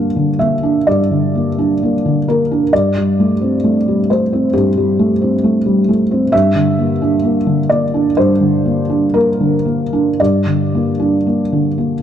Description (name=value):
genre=neoclassical minimalist piano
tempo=55-68 BPM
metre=4/4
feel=rubato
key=G dorian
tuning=A4 = 440 Hz
part: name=felt-muted upright piano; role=solo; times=0.0-12.0 s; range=G2 to F5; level=-12 LUFS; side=equal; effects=none
room=small room ambience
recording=dry, close 1970s-style studio recording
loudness=-12 LUFS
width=side -9 dB against mid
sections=0.0-12.0 A section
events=none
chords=0.0 Gm7; 2.7 Am7/G; 6.3 Gm